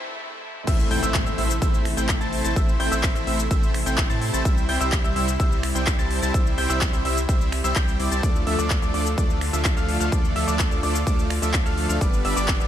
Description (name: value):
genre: EDM, festival progressive house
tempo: 127 BPM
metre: 4/4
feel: straight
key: A minor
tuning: A4 = 439 Hz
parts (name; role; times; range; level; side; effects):
- lush unison pad; sustained chords; 0.0-12.7 s; C3 to G4; -32 LUFS; equal; chorus, sidechain pumping
- warm grand piano; arpeggios; 0.7-12.7 s; D6 to A6; -30 LUFS; equal; sidechain pumping, ping-pong delay
- supersaw chords; riff; 0.7-12.7 s; F3 to A5; -27 LUFS; equal; sidechain pumping, ping-pong delay
- saturated sub bass; bass; 0.7-12.7 s; G1 to A2; -27 LUFS; equal; sidechain pumping
- big-room dance drum kit; drums; 0.7-12.7 s; cabasa, crash cymbal, finger snaps, handclaps, hi-hat; -29 LUFS; left 2 dB; none
- electronic kick drum; drums; 0.7-12.6 s; none; -22 LUFS; equal; none
- impact; sound effects; 0.7-2.6 s; none; -34 LUFS; equal; none
room: little or no reverb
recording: high-pass filter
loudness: -20 LUFS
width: side -11 dB against mid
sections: 0.7-12.7 A section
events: break 0.0-0.7; drop 0.7-12.7; impact 0.7-2.6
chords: 0.0 C; 0.7 Am; 4.5 C; 8.2 Dm; 12.0 G